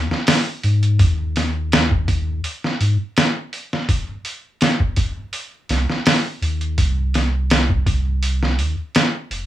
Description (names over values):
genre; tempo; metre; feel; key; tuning
trip hop; 83 BPM; 4/4; swing 53% on 16ths; unclear; A4 = 441 Hz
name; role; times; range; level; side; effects
warm sub bass; bass; 0.0-9.5 s; F1 to Ab2; -18 LUFS; equal; none
trip hop sampler-style drum kit; drums; 0.1-9.5 s; hi-hat, kick drum, snare drum; -18 LUFS; equal; small room reverb
room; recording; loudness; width
light reverb; rough home demo mix; -17 LUFS; side -13 dB against mid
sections
0.0-9.5 A section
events
none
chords
none